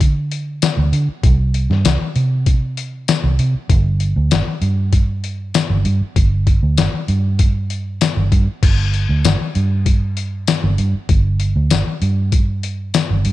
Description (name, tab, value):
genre	straight-eighth soul blues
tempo	97 BPM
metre	4/4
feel	straight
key	unclear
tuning	A4 = 437 Hz
part	vintage muted fingered electric bass	bass	0.0-13.3 s	G1 to D3	-16 LUFS	right 1 dB	none
part	trip hop sampler-style drum kit	drums	0.0-13.3 s	crash cymbal, hi-hat, kick drum, snare drum, tambourine	-16 LUFS	left 2 dB	none
room	little or no reverb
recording	1960s-style stereo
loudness	-14 LUFS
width	side -16 dB against mid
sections	0.0-8.6 A section; 8.6-13.3 B section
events	none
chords	none